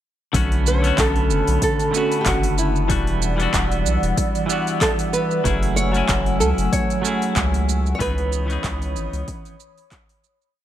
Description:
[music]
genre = sunset chillout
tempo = 94 BPM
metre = 4/4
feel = swing 55% on 16ths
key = B minor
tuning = A4 = 441 Hz
[part]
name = semi-hollow electric guitar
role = accompaniment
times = 0.3-9.6 s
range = D3 to G#5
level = -24 LUFS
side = equal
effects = auto-pan, vintage 12-bit sampler grit, tape echo
[part]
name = airy breathy pad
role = sustained chords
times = 0.3-10.5 s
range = A3 to E6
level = -27 LUFS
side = right 1 dB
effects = chorus
[part]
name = round analog bass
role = bass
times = 0.3-9.2 s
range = E1 to C#2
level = -22 LUFS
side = equal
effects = none
[part]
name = deep house drum kit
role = drums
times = 0.3-10.5 s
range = handclaps, hi-hat, shaker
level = -27 LUFS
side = right 2 dB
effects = overdrive
[part]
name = electronic kick drum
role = drums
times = 0.3-10.1 s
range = none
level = -25 LUFS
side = equal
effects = overdrive
[part]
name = nylon-string guitar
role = melody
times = 0.7-10.2 s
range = E4 to C#5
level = -24 LUFS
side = right 1 dB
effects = tape echo
[sound]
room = light reverb, digital ambience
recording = none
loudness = -18 LUFS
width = side -12 dB against mid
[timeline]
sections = 0.3-10.6 groove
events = fade-out 7.2-10.6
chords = 0.3 Bm9; 2.9 Em9; 5.4 F#m9; 8.0 C#m9

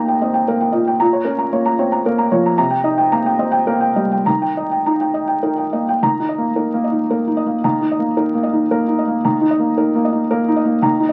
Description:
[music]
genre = neoclassical minimalist piano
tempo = 98-116 BPM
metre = 3/4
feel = rubato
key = Eb mixolydian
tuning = A4 = 440 Hz
[part]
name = felt-muted upright piano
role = solo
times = 0.0-11.1 s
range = Eb2 to Bb5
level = -17 LUFS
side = equal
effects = none
[sound]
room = moderate studio ambience, RT60 0.5 s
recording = very old 78 rpm record, vinyl crackle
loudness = -17 LUFS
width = mono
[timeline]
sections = 0.0-6.0 A section; 6.0-11.1 B section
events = none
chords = 0.0 Eb; 1.0 Bbm; 2.6 Cm7; 4.3 Eb; 6.0 Eb5

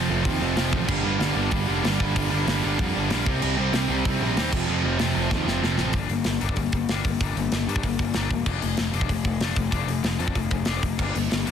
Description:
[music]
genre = punk rock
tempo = 190 BPM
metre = 4/4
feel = straight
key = G minor from 5.9 s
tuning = A4 = 441 Hz
[part]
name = heavy high-gain guitar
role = riff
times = 0.0-5.9 s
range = F2 to C4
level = -30 LUFS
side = equal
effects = distortion
[part]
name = overdriven electric guitar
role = riff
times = 0.0-5.9 s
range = F2 to C4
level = -26 LUFS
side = right 11 dB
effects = none
[part]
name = tight distorted guitar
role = riff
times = 0.0-11.5 s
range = F2 to Eb4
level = -28 LUFS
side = left 12 dB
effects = distortion
[part]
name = fuzz picked electric bass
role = bass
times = 0.0-11.5 s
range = E1 to G2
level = -27 LUFS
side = equal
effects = overdrive
[part]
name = tight metal drum kit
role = drums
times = 0.3-11.5 s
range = crash cymbal, hi-hat, kick drum, snare drum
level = -27 LUFS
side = equal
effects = soft clipping on kick
[sound]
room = light reverb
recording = dense, heavily limited modern master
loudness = -22 LUFS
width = side -8 dB against mid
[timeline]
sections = 0.0-5.9 A section; 5.9-11.5 B section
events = drum fill 5.3-5.9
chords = 0.0 F; 0.9 Gm; 3.2 Cm; 4.5 F; 5.9 Gm; 8.5 Dm/F; 11.0 Gm

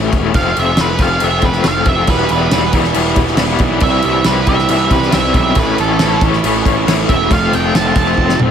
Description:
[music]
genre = quiet-loud alternative rock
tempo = 138 BPM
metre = 4/4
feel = straight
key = unclear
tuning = A4 = 436 Hz
[part]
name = raw garage guitar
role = riff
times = 0.0-8.5 s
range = A2 to F4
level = -18 LUFS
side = left 8 dB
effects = overdrive, tremolo
[part]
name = fuzz picked electric bass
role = bass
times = 0.0-8.5 s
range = E1 to C2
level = -18 LUFS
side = equal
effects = overdrive
[part]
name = loose indie drum kit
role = drums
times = 0.1-8.5 s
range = crash cymbal, kick drum, snare drum, toms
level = -16 LUFS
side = equal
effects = none
[part]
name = octave-fuzz lead guitar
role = melody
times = 0.4-8.4 s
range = A4 to A5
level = -18 LUFS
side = right 5 dB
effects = distortion
[part]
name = fuzz guitar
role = riff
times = 2.1-8.5 s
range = A2 to F4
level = -19 LUFS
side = right 14 dB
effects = distortion
[sound]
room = light reverb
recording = none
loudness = -11 LUFS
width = side -8 dB against mid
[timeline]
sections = 0.0-8.5 A section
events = lead electric guitar solo 0.0-8.5; drum fill 8.2-8.5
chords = 0.3 F; 2.1 Em; 3.8 C; 5.6 A; 7.3 F

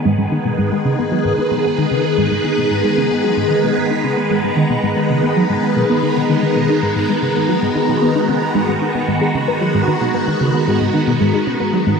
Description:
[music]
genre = ambient, sequencer-driven space music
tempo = 113 BPM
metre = 4/4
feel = straight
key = G# minor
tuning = A4 = 439 Hz
[part]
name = phased string machine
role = sustained chords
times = 0.0-12.0 s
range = Eb3 to B4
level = -16 LUFS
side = equal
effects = ensemble chorus, phaser
[part]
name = bubbling stepped-filter texture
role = texture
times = 0.0-12.0 s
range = A#5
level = -28 LUFS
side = right 2 dB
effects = chorus, built-in reverb
[part]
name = tight sequenced synth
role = riff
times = 0.1-11.9 s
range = G#2 to D#4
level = -19 LUFS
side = equal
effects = chorus, phaser, ping-pong delay
[sound]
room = moderate plate reverb, RT60 2.8 s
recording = none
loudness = -14 LUFS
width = side -5 dB against mid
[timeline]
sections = 0.0-12.0 A section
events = fade-in on synth texture 0.0-12.0; filter sweep on synth arpeggio sound 0.0-12.0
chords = 0.0 G#m

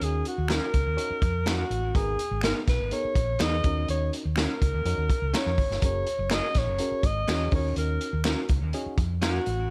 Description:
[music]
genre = uptempo 1960s-style soul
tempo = 124 BPM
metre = 4/4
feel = straight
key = unclear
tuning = A4 = 435 Hz
[part]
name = mellow alto saxophone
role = melody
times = 0.0-9.7 s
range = F#4 to D#5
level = -32 LUFS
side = equal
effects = none
[part]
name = bright reed electric piano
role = accompaniment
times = 0.0-9.5 s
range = B3 to C#5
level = -38 LUFS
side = equal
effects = overdrive, phaser
[part]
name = hollow-body short-scale fingered electric bass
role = bass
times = 0.0-9.7 s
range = F#1 to E#2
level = -31 LUFS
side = equal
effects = none
[part]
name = crunchy breakbeat drum kit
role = drums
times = 0.0-9.6 s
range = hi-hat, kick drum, snare drum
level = -30 LUFS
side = equal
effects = none
[part]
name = electric guitar through a small old amp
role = stabs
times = 0.5-9.4 s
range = B3 to A#4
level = -39 LUFS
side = equal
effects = tape echo
[part]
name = finger snap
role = percussion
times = 0.5-9.3 s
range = none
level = -39 LUFS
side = equal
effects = none
[sound]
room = little or no reverb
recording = none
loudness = -26 LUFS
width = mono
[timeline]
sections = 0.0-9.7 A section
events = none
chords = 0.0 D#m7; 1.9 G#madd9; 3.6 D#m7; 5.8 F#add9; 7.5 D#m7

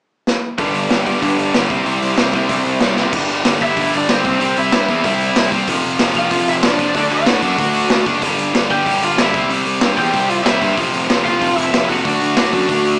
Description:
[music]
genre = punk rock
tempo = 188 BPM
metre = 4/4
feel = straight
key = unclear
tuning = A4 = 439 Hz
[part]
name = raw garage drum kit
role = drums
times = 0.3-12.9 s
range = crash cymbal, hi-hat, kick drum, snare drum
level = -18 LUFS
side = equal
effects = none
[part]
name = crunchy overdriven guitar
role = riff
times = 0.6-3.1 s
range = G2 to E4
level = -20 LUFS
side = right 1 dB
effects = none
[part]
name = tight distorted guitar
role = riff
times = 0.6-13.0 s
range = F2 to D4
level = -17 LUFS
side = equal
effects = distortion
[part]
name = fuzz picked electric bass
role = bass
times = 0.6-12.9 s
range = F1 to A2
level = -22 LUFS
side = equal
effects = overdrive
[part]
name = raw garage guitar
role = melody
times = 3.6-13.0 s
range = C4 to G5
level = -18 LUFS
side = equal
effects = overdrive
[sound]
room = light reverb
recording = small speaker sound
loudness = -13 LUFS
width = side -36 dB against mid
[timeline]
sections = 0.6-3.1 A section; 3.1-13.0 B section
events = drum fill 0.3-0.6, 3.0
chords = 0.0 N.C.; 0.6 G; 1.7 C; 3.1 G5; 4.2 C; 5.7 F5; 7.0 D; 8.2 G5; 9.3 C; 10.8 F5; 12.1 D

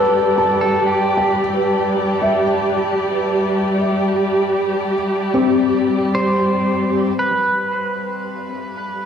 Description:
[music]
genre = ambient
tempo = 57 BPM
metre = 4/4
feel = straight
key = unclear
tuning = A4 = 439 Hz
[part]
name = pedal steel guitar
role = melody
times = 0.0-9.1 s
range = G4 to C5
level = -22 LUFS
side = right 1 dB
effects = diffuse ambient delay
[part]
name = muted studio string section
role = sustained chords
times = 0.0-9.1 s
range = G3 to G5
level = -19 LUFS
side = right 1 dB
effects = none
[part]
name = felt-muted upright piano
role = arpeggios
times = 0.0-9.1 s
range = G3 to A5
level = -20 LUFS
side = left 2 dB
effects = diffuse ambient delay
[sound]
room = wet concert hall reverb, RT60 2.4 s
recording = cassette tape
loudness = -15 LUFS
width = side -8 dB against mid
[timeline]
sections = 0.0-7.2 A section; 7.2-9.1 B section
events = filter sweep on string section 0.0-7.2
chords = 0.0 Am11/G; 7.2 G7

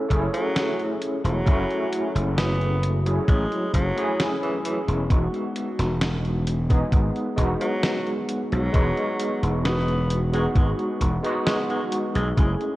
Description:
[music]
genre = vaporwave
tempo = 66 BPM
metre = 4/4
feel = straight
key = E major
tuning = A4 = 440 Hz
[part]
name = overdriven tine electric piano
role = accompaniment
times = 0.0-12.8 s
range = F#3 to A4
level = -26 LUFS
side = equal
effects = medium tremolo, analog chorus, tape echo
[part]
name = gritty slap bass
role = bass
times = 0.1-12.5 s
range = E1 to B1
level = -24 LUFS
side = equal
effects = overdrive
[part]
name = electronic kick drum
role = drums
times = 0.1-12.6 s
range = none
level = -20 LUFS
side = equal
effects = none
[part]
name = gated 80s digital drum machine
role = drums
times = 0.1-12.8 s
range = cabasa, hi-hat, snare drum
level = -29 LUFS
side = equal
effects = gated reverb, gated reverb snare
[part]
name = raspy tenor saxophone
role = melody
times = 0.3-12.5 s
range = E3 to B3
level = -30 LUFS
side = equal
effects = tape echo
[sound]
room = moderate concert hall reverb, RT60 2.0 s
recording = worn, warbling old tape, cassette tape, warbly pitch drift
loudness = -21 LUFS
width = side -17 dB against mid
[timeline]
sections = 0.0-12.8 A section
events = none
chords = 0.0 F#m7; 5.1 Emaj9

